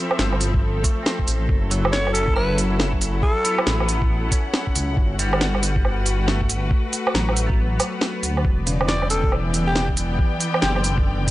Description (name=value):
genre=future garage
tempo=138 BPM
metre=4/4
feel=swing 63% on 16ths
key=unclear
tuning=A4 = 445 Hz
part: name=semi-hollow electric guitar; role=accompaniment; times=0.0-11.3 s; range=C#3 to E4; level=-29 LUFS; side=right 1 dB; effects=analog chorus, sidechain pumping, tape echo
part: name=rich symphonic string section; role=sustained chords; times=0.0-11.3 s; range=E3 to G5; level=-28 LUFS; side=left 2 dB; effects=sidechain pumping
part: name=organic electronic drum kit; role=drums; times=0.1-11.3 s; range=hi-hat, shaker, snare drum, woodblock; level=-23 LUFS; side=right 1 dB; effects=none
part: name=dark detuned saw bass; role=bass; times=0.2-11.3 s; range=E1 to D2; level=-23 LUFS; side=equal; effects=sidechain pumping
part: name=electronic kick drum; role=drums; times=0.5-11.3 s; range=none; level=-21 LUFS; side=equal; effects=none
part: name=raspy alto saxophone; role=melody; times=1.9-3.6, 8.9-10.8 s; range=G4 to D5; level=-26 LUFS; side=equal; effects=tape echo
room=light reverb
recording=nothing above 10.4 kHz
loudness=-18 LUFS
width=side -16 dB against mid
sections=0.0-11.3 A section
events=kick drops out 7.6-8.4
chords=0.0 Fmaj7; 1.5 F#m7; 5.0 Gmaj7; 8.4 Em7